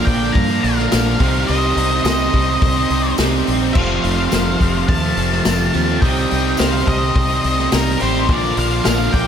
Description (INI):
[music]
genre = classic rock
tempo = 106 BPM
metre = 4/4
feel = straight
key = C dorian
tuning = A4 = 440 Hz
[part]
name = octave-fuzz lead guitar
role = melody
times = 0.0-9.3 s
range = Bb4 to Bb5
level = -22 LUFS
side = equal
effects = distortion, slapback echo, tape echo
[part]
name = octave-fuzz lead guitar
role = second line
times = 0.0-9.3 s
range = Eb4 to F5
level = -28 LUFS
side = right 1 dB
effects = distortion, slapback echo
[part]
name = bright tonewheel organ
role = sustained chords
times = 0.0-9.3 s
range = Bb3 to D5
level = -33 LUFS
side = equal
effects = none
[part]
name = crunchy overdriven guitar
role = riff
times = 0.0-9.3 s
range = F2 to Eb4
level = -22 LUFS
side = left 10 dB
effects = none
[part]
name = raw garage guitar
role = riff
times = 0.0-9.3 s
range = F2 to C4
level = -21 LUFS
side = right 10 dB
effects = overdrive, slapback echo
[part]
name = fingered electric bass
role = bass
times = 0.1-9.3 s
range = F1 to G2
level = -21 LUFS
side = equal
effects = none
[part]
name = vintage drum kit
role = drums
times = 0.1-9.3 s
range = crash cymbal, hi-hat, kick drum, snare drum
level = -20 LUFS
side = left 1 dB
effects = none
[part]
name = tambourine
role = percussion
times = 0.9-9.0 s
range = none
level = -33 LUFS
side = right 7 dB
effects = none
[sound]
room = moderate lush hall reverb, RT60 1.8 s, small room ambience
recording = big arena sound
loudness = -14 LUFS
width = side -8 dB against mid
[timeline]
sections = 0.0-9.3 A section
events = none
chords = 0.0 Bb; 1.2 Cm; 3.8 F; 6.0 Cm; 8.3 Bb